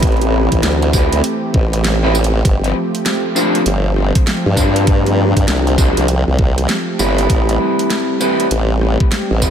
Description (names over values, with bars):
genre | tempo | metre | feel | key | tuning
glitch hop | 99 BPM | 4/4 | swing 63% on 16ths | A minor | A4 = 440 Hz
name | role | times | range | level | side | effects
warm analog pad | sustained chords | 0.0-9.5 s | E3 to G4 | -21 LUFS | right 1 dB | chorus, sidechain pumping
electric guitar at the edge of break-up | stabs | 0.0-9.5 s | C4 to C5 | -19 LUFS | left 1 dB | sidechain pumping, ping-pong delay
formant-sweep wobble bass | bass | 0.0-9.5 s | G1 to G2 | -15 LUFS | equal | chorus
dubstep drum kit | drums | 0.0-9.5 s | hi-hat, rim click, snare drum, tambourine | -22 LUFS | right 1 dB | none
electronic kick drum | drums | 0.0-9.5 s | none | -15 LUFS | equal | none
room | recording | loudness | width
light reverb, digital ambience | none | -12 LUFS | side -8 dB against mid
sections
0.0-9.5 A section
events
none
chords
0.0 Am7; 2.5 G9sus4; 7.3 Am7